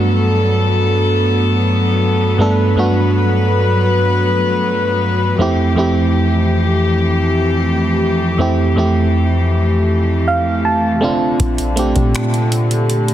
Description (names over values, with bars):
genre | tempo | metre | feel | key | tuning
contemporary R&B | 80 BPM | 4/4 | straight | G major | A4 = 436 Hz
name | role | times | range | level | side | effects
FM electric piano | accompaniment | 0.0-13.1 s | F2 to A5 | -15 LUFS | right 1 dB | chorus
rich chamber string section | sustained chords | 0.0-13.1 s | F2 to B4 | -17 LUFS | left 2 dB | none
clean 808-style bass | bass | 11.4-13.1 s | Bb1 to Bb2 | -17 LUFS | equal | none
booming analog drum machine | drums | 11.4-13.1 s | finger snaps, hi-hat, kick drum | -19 LUFS | equal | soft clipping on snare
room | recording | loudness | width
light reverb | dense, heavily limited modern master | -13 LUFS | side -11 dB against mid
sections
0.0-13.1 A section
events
FM electric piano fill 9.9-11.4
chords
0.0 Gmaj9; 5.4 Fmaj9; 11.0 Bbmaj9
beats
0.15 0.90 1.65 | 2.40 3.15 3.90 4.65 | 5.40 6.15 6.90 7.65 | 8.40 9.15 9.90 10.65 | 11.40 12.15 12.90